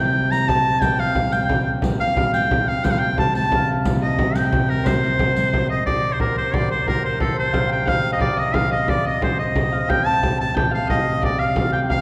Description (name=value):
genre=medieval dance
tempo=119 BPM (dotted quarters)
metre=6/8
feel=straight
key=C dorian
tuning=A4 = 440 Hz
part: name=clear shawm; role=melody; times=0.0-12.0 s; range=A4 to Bb5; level=-24 LUFS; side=equal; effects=none
part: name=Celtic harp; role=second line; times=0.0-12.0 s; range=A4 to Bb5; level=-29 LUFS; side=equal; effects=none
part: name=rich viola da gamba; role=drone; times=0.0-12.0 s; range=C3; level=-28 LUFS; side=equal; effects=none
part: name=riq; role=percussion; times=0.3-5.5 s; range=none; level=-31 LUFS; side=equal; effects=none
part: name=frame drum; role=percussion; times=0.5-12.0 s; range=none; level=-25 LUFS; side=equal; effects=none
room=wet concert hall reverb, RT60 1.7 s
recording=heard from further back in the room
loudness=-20 LUFS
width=mono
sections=0.0-5.9 A section; 5.9-12.0 B section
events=none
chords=none